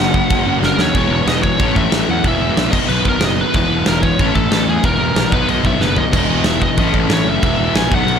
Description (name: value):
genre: punk rock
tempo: 185 BPM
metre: 4/4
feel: straight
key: unclear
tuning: A4 = 439 Hz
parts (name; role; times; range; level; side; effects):
- biting lead guitar; melody; 0.0-8.2 s; G#4 to G#5; -20 LUFS; equal; overdrive, ping-pong delay
- raw garage guitar; riff; 0.0-8.2 s; A2 to F#4; -22 LUFS; right 13 dB; overdrive
- sludgy distorted guitar; riff; 0.0-8.2 s; E2 to B3; -20 LUFS; left 13 dB; overdrive
- fuzz picked electric bass; bass; 0.0-8.2 s; E1 to E2; -21 LUFS; equal; overdrive
- big rock drum kit; drums; 0.1-8.2 s; crash cymbal, kick drum, snare drum, toms; -18 LUFS; equal; none
room: light reverb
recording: none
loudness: -13 LUFS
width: side -7 dB against mid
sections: 1.0-8.2 A section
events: drum fill 0.6-1.0, 5.8-6.1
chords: 0.0 F#; 1.0 E; 1.6 A; 2.2 E; 2.7 B; 3.5 E; 4.2 A; 4.8 E; 5.3 B; 6.1 E; 6.8 A; 7.4 E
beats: 0.31 0.63 | 0.95 1.27 1.60 1.92 | 2.25 2.57 2.89 3.22 | 3.54 3.87 4.19 4.52 | 4.84 5.17 5.49 5.81 | 6.14 6.46 6.79 7.11 | 7.44 7.76 8.09